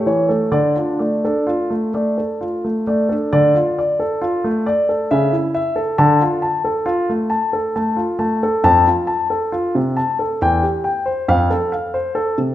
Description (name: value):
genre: classical, baroque-style suite movement for grand piano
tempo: 68 BPM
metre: 3/4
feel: rubato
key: D minor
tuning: A4 = 441 Hz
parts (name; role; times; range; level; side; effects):
- warm grand piano; solo; 0.0-12.5 s; E2 to A5; -16 LUFS; equal; none
room: wet recital hall reverb, RT60 1.6 s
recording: none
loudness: -16 LUFS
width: side -13 dB against mid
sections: 0.0-3.3 A section; 3.3-12.5 B section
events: none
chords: 0.0 A; 0.5 Dm; 5.1 A/C#; 6.0 Dm (rootless); 8.6 F; 10.4 C/E; 11.3 F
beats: | 0.52 1.47 2.41 | 3.34 4.23 5.12 | 5.99 6.88 7.76 | 8.64 9.52 10.40 | 11.28 12.15